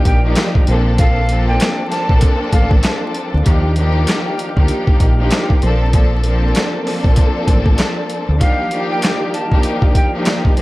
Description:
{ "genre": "hip hop, boom-bap hip-hop", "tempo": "97 BPM", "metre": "4/4", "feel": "swing 59% on 16ths", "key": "Eb lydian", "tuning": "A4 = 442 Hz", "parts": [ { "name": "dark studio string section", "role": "accompaniment", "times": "0.0-10.6 s", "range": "F3 to A4", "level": "-19 LUFS", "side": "left 1 dB", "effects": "high-pass filter, low-pass filter" }, { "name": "tonewheel organ", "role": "sustained chords", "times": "0.0-10.6 s", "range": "Eb3 to A5", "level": "-29 LUFS", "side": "right 1 dB", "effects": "slow rotary speaker, high-pass filter, low-pass filter" }, { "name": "breathy jazz flute", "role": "melody", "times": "0.1-2.7, 8.4-10.1 s", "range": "F5 to A5", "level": "-23 LUFS", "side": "right 1 dB", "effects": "high-pass filter, low-pass filter, analog delay" }, { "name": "deep dub fingered electric bass", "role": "bass", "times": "0.1-8.4 s", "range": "A1 to Eb2", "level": "-15 LUFS", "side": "equal", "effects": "none" }, { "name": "boom bap sampler-style drum kit", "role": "drums", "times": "0.1-10.6 s", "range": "handclaps, hi-hat, kick drum, snare drum", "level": "-14 LUFS", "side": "equal", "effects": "none" } ], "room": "little or no reverb", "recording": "vinyl crackle", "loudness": "-12 LUFS", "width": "side -19 dB against mid", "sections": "0.0-10.6 A section", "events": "none", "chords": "0.0 Ebmaj9; 0.7 Bbmaj9; 3.5 Ebmaj9; 5.6 Bbmaj9; 8.4 Ebmaj9", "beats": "0.37 | 0.99 1.61 2.23 2.84 | 3.46 4.08 4.70 5.32 | 5.94 6.55 7.17 7.79 | 8.41 9.03 9.65 10.27" }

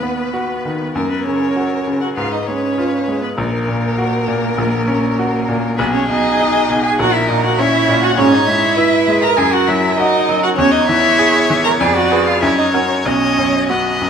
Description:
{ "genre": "quick classical-period movement for piano quartet", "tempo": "99 BPM", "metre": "4/4", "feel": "rubato", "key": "unclear", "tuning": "A4 = 440 Hz", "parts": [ { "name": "rich violin", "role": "melody", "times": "0.0-14.1 s", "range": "A#4 to A#5", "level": "-20 LUFS", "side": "left 7 dB", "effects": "none" }, { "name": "rich cello", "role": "second line", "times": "0.0-14.1 s", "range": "A#3 to A#4", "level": "-18 LUFS", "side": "right 6 dB", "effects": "none" }, { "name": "warm violin", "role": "second line", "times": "0.0-14.1 s", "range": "G#4 to D#5", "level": "-21 LUFS", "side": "left 2 dB", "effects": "none" }, { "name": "bright grand piano", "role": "accompaniment", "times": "0.0-14.1 s", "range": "A#1 to Cb5", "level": "-18 LUFS", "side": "left 1 dB", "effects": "none" } ], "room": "wet recital hall reverb, RT60 1.4 s", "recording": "minimal, uncompressed stereo recording", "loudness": "-13 LUFS", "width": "side -7 dB against mid", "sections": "0.0-14.1 A section", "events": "none", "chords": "0.0 B/D#; 0.9 F#; 2.2 Fdim/Ab; 3.4 F#/A#; 5.8 G#m/B; 7.0 F#7/A#; 8.2 E/G#; 9.4 F#13; 10.6 C#m/E; 11.8 Fdim7; 12.4 F#; 13.1 B", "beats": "0.33 | 0.95 1.56 2.17 2.77 | 3.38 3.98 4.58 5.18 | 5.79 6.39 6.99 7.58 | 8.18 8.78 9.38 9.98 | 10.59 11.19 11.81 12.42 | 13.06 13.70" }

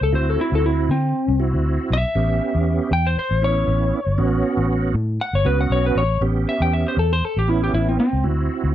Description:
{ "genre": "straight-eighth soul blues", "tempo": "118 BPM", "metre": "4/4", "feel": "swing 55% on 16ths", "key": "A mixolydian", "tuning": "A4 = 439 Hz", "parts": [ { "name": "lightly driven lead guitar", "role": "melody", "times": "0.0-8.2 s", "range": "C4 to G5", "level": "-22 LUFS", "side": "left 2 dB", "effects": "none" }, { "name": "vintage muted fingered electric bass", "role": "bass", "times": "0.0-8.7 s", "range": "G1 to D3", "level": "-20 LUFS", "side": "left 1 dB", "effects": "none" }, { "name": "bright tonewheel organ", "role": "accompaniment", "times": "0.1-8.7 s", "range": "B3 to G4", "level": "-23 LUFS", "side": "right 5 dB", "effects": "chorus vibrato, slow rotary speaker" } ], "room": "little or no reverb", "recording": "dry, close 1970s-style studio recording", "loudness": "-17 LUFS", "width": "side -12 dB against mid", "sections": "0.0-6.2 A section; 6.2-8.7 B section", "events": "lead electric guitar solo 0.0-6.2", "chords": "0.1 D9; 2.2 A9; 8.2 D9", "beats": "| 0.13 0.63 1.14 1.65 | 2.16 2.66 3.17 3.68 | 4.18 4.69 5.20 5.71 | 6.21 6.72 7.23 7.73 | 8.24 8.75" }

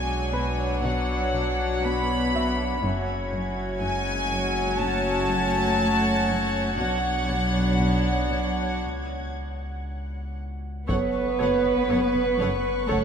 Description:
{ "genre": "cinematic, suspense film score", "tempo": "60 BPM", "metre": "4/4", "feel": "straight", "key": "F# minor", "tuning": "A4 = 440 Hz", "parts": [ { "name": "clear studio violin section", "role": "melody", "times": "0.0-13.0 s", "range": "F#5 to B5", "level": "-29 LUFS", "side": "left 2 dB", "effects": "none" }, { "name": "warm studio violin section", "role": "second line", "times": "0.0-13.0 s", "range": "F#4 to C#5", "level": "-29 LUFS", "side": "right 3 dB", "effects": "none" }, { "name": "warm studio viola section", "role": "accompaniment", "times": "0.0-13.0 s", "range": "F#3 to C#5", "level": "-31 LUFS", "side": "left 1 dB", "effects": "none" }, { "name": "warm symphonic cello section", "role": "riff", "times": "0.0-13.0 s", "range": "F#2 to B3", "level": "-34 LUFS", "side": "right 1 dB", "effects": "none" }, { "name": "dark studio cello section", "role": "bass", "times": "0.0-13.0 s", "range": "F#3 to B3", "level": "-29 LUFS", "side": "equal", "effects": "none" }, { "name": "dark studio double bass section", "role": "bass", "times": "0.0-13.0 s", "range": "F#1 to B1", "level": "-32 LUFS", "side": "equal", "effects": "none" }, { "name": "saturated sub bass", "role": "drone", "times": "0.0-13.0 s", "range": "F#1 to C#2", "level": "-34 LUFS", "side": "equal", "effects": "wide subtle chorus" }, { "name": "bright baby grand piano", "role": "texture", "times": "0.3-13.0 s", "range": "B4 to B5", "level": "-37 LUFS", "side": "left 2 dB", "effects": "none" }, { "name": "dark studio violin section", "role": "texture", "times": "2.9-13.0 s", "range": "F#5 to G#6", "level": "-38 LUFS", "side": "left 1 dB", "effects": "none" }, { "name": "mellow French horn section", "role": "sustained chords", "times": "10.9-13.0 s", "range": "A4 to C#5", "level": "-32 LUFS", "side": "right 4 dB", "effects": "none" }, { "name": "taiko ensemble", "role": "drums", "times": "10.9-13.0 s", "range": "none", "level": "-36 LUFS", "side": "equal", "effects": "none" } ], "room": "wet cathedral reverb, RT60 5.1 s", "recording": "in a vast, echoing space", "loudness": "-22 LUFS", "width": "side -7 dB against mid", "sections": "0.0-10.9 A section; 10.9-13.0 B section", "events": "break 8.8-10.9", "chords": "0.0 Bmadd9; 2.8 F#madd9; 6.8 Bmadd9; 8.8 C#5; 10.9 F#m", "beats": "0.83 1.85 | 2.84 3.82 4.80 5.80 | 6.79 7.80 8.83 9.87 | 10.89 11.90 12.89" }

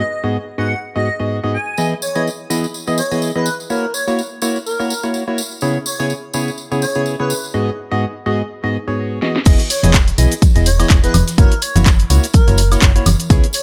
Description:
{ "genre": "piano house", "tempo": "125 BPM", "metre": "4/4", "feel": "swing 56% on 16ths", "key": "unclear", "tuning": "A4 = 440 Hz", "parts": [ { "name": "airy dreamy lead", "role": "melody", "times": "0.0-13.6 s", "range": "A#4 to G#5", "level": "-26 LUFS", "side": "equal", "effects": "chorus, delay" }, { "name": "percussive organ stab", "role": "riff", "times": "0.0-13.5 s", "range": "G#2 to D#5", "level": "-22 LUFS", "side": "equal", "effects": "lush chorus, sidechain pumping, delay" }, { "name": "tambourine and congas", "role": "percussion", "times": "1.8-13.6 s", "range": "none", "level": "-26 LUFS", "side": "equal", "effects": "none" }, { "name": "house drum kit", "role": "drums", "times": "9.2-13.6 s", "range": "cabasa, crash cymbal, handclaps, hi-hat, snare drum, woodblock", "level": "-22 LUFS", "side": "equal", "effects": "overdrive, low-pass filter on snare, low-pass filter on hats, low-pass filter on cymbals, low-pass filter on perc" }, { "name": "solid FM bass", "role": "bass", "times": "9.5-13.4 s", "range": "E1 to C#2", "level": "-16 LUFS", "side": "equal", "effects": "tube saturation, sidechain pumping" }, { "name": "electronic kick drum", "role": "drums", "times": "9.5-13.4 s", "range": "none", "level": "-13 LUFS", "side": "equal", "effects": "overdrive" }, { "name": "natural country drum kit", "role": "drums", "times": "9.5-13.6 s", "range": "hi-hat, snare drum", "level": "-35 LUFS", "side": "equal", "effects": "none" } ], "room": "light reverb, small room reverb", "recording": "none", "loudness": "-16 LUFS", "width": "mono", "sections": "0.0-9.5 A section; 9.5-13.6 B section", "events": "drum fill 9.2; drop 9.5-13.6", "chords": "0.0 G#m7; 1.8 Emaj7; 3.7 F#7; 5.6 C#m7; 7.5 G#m7; 9.5 Emaj7; 11.4 F#7", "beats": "0.34 0.82 1.30 | 1.78 2.26 2.74 3.22 | 3.70 4.18 4.66 5.14 | 5.62 6.10 6.58 7.06 | 7.54 8.02 8.50 8.98 | 9.46 9.94 10.42 10.90 | 11.38 11.86 12.34 12.82 | 13.30" }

